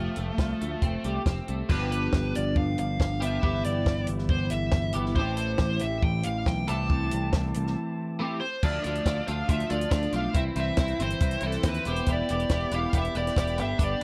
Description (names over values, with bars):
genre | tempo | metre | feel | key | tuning
indie rock | 139 BPM | 4/4 | straight | D dorian | A4 = 442 Hz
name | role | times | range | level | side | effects
dark smooth lead guitar | melody | 0.0-14.0 s | A3 to A5 | -35 LUFS | equal | overdrive
twelve-string electric guitar | riff | 0.0-14.0 s | E3 to G4 | -33 LUFS | equal | analog chorus
picked electric bass | bass | 0.0-13.9 s | E1 to Eb2 | -33 LUFS | equal | none
compact cocktail drum kit | drums | 0.2-14.0 s | crash cymbal, hi-hat, kick drum, snare drum | -30 LUFS | equal | none
room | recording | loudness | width
small room reverb | dark, warm production | -27 LUFS | mono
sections
0.0-1.7 A section; 1.7-8.6 B section; 8.6-14.0 C section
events
break 7.8-8.6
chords
0.0 Fadd9; 1.7 G7; 3.4 G6; 5.2 Am7; 6.7 C6; 8.6 Dm; 10.4 Am (rootless); 11.9 Em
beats
0.39 0.82 1.26 | 1.69 2.13 2.56 3.00 | 3.43 3.87 4.30 4.73 | 5.17 5.60 6.03 6.47 | 6.90 7.33 7.76 8.20 | 8.63 9.06 9.49 9.92 | 10.35 10.78 11.21 11.65 | 12.08 12.51 12.94 13.37 | 13.80